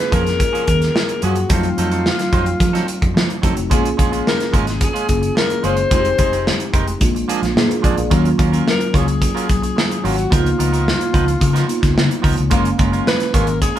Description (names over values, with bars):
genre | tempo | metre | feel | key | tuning
polished 1980s jazz-funk pop | 109 BPM | 4/4 | straight | F# major | A4 = 445 Hz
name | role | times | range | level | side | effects
breathy alto saxophone | melody | 0.0-13.8 s | E#4 to B#4 | -21 LUFS | left 2 dB | none
mellow tine electric piano | accompaniment | 0.0-13.8 s | Gb3 to E#5 | -22 LUFS | left 1 dB | slow stereo tremolo
semi-hollow electric guitar | riff | 0.0-13.8 s | E#3 to C#5 | -24 LUFS | right 5 dB | none
modern studio drum kit | drums | 0.0-13.8 s | hi-hat, kick drum, snare drum | -18 LUFS | equal | none
vintage muted fingered electric bass | bass | 0.1-13.6 s | F1 to F3 | -20 LUFS | equal | none
room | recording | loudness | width
moderate studio reverb, RT60 0.6 s | band playing live in one room | -14 LUFS | side -11 dB against mid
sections
0.0-13.8 A section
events
none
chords
0.0 F#maj9; 1.5 F7b9; 3.7 A#m7; 5.9 Fm7; 7.0 A#7; 8.1 D#m9; 10.3 C#13; 12.5 F#maj9